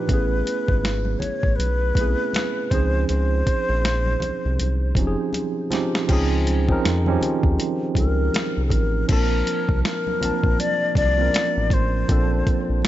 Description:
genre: R&B, neo-soul.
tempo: 80 BPM.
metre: 4/4.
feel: swing 58% on 16ths.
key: unclear.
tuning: A4 = 439 Hz.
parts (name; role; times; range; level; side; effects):
bright wooden-headed alto flute; melody; 0.0-12.8 s; A4 to D5; -25 LUFS; left 2 dB; tape echo.
tine electric piano; accompaniment; 0.0-12.9 s; Bb2 to A5; -25 LUFS; right 3 dB; medium stereo tremolo.
round analog bass; bass; 0.1-12.8 s; F1 to F2; -22 LUFS; equal; none.
dusty soul sampler-style drum kit; drums; 0.1-12.9 s; crash cymbal, finger snaps, hi-hat, kick drum, snare drum; -23 LUFS; equal; none.
congas; percussion; 0.1-12.9 s; none; -36 LUFS; equal; none.
room: little or no reverb.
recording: nothing above 7.8 kHz.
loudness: -19 LUFS.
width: side -14 dB against mid.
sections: 0.0-6.1 A section; 6.1-9.1 B section; 9.1-12.9 C section.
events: drum fill 5.3-6.1.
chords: 0.1 Amaj9; 2.7 Dbmaj9; 9.1 Bbmaj9.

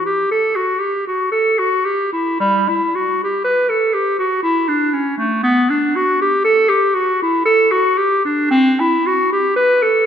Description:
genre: classical, baroque-style fantasia for unaccompanied clarinet.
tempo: 59 BPM.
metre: 3/4.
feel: rubato.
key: G major from 5.5 s.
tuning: A4 = 442 Hz.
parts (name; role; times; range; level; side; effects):
clear clarinet; solo; 0.0-10.1 s; G3 to B4; -14 LUFS; equal; none.
room: moderate concert hall reverb, RT60 2.4 s.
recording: minimal, uncompressed stereo recording.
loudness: -14 LUFS.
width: side -8 dB against mid.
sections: 0.0-10.1 A section.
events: none.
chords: none.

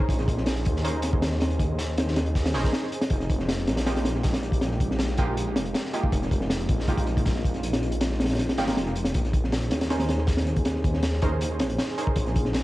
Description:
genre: drum and bass, jungle.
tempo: 159 BPM.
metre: 4/4.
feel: straight.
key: Bb dorian.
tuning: A4 = 440 Hz.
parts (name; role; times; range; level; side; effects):
warbly tape-like pad; sustained chords; 0.0-12.6 s; Ab3 to C5; -33 LUFS; equal; chorus, built-in reverb.
crunchy breakbeat drum kit; drums; 0.0-12.6 s; hi-hat, kick drum, snare drum; -25 LUFS; equal; cassette tape.
detuned saw bass; bass; 0.1-12.6 s; F1 to Eb2; -28 LUFS; equal; none.
crunchy breakbeat drum kit; drums; 0.1-12.6 s; hi-hat, snare drum; -40 LUFS; left 1 dB; high-pass filter on hats, cassette tape, high-pass filter on snare, high-pass filter on room.
orchestra-hit-like synth stab; stabs; 0.8-12.1 s; Ab3 to C5; -33 LUFS; right 2 dB; built-in reverb, dub echo.
room: little or no reverb.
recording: home recording on cassette.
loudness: -23 LUFS.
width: side -17 dB against mid.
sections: 0.0-12.6 A section.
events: none.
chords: 0.0 Bbm11; 3.1 Fm11; 9.1 Bbm11.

